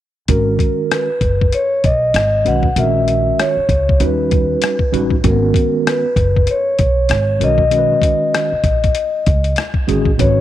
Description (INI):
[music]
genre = hip hop, jazz-hop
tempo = 97 BPM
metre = 4/4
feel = swing 61% on 16ths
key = G# minor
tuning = A4 = 438 Hz
[part]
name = vibraphone with soft mallets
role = melody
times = 0.3-10.4 s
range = A#4 to F#5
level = -17 LUFS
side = moving between left 5 dB and right 5 dB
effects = auto-pan
[part]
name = mellow tine electric piano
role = accompaniment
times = 0.3-10.4 s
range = D#3 to B4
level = -20 LUFS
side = right 1 dB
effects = medium stereo tremolo
[part]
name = upright bass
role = bass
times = 0.3-10.4 s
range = F#1 to D#2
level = -18 LUFS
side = right 1 dB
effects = none
[part]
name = boom bap sampler-style drum kit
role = drums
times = 0.3-10.4 s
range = hi-hat, kick drum, rim click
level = -18 LUFS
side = left 1 dB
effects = none
[sound]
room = light reverb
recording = 1960s-style stereo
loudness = -13 LUFS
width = side -13 dB against mid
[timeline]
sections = 0.3-10.2 A section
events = none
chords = 0.3 G#m11; 2.8 A#m7b5; 4.0 D#7alt; 5.2 G#m11